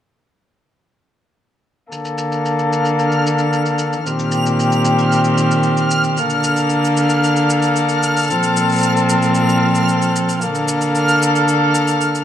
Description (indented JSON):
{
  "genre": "folktronica",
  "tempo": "113 BPM",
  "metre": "4/4",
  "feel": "straight",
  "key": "Bb major",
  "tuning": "A4 = 441 Hz",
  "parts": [
    { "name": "muted string quartet", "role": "sustained chords", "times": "1.9-12.2 s", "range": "Bb2 to A4", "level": "-14 LUFS", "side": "equal", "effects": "vintage 12-bit sampler grit, low-pass filter" },
    { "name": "shaker", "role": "drums", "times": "1.9-12.2 s", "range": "none", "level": "-27 LUFS", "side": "equal", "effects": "low-pass filter on perc, low-pass filter on room" },
    { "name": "backwards swelling texture", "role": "texture", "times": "2.8-12.2 s", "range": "F6", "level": "-22 LUFS", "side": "right 2 dB", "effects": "built-in reverb" }
  ],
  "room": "moderate echo chamber reverb, RT60 2.2 s",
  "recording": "dark, warm production",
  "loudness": "-14 LUFS",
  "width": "side -10 dB against mid",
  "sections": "1.9-12.2 A section",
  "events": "filter sweep on string quartet 1.9-12.2",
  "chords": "1.9 Bbmaj7; 4.1 Eb6/Bb; 6.2 Bbmaj7; 8.3 F/Bb; 10.4 Bbmaj7"
}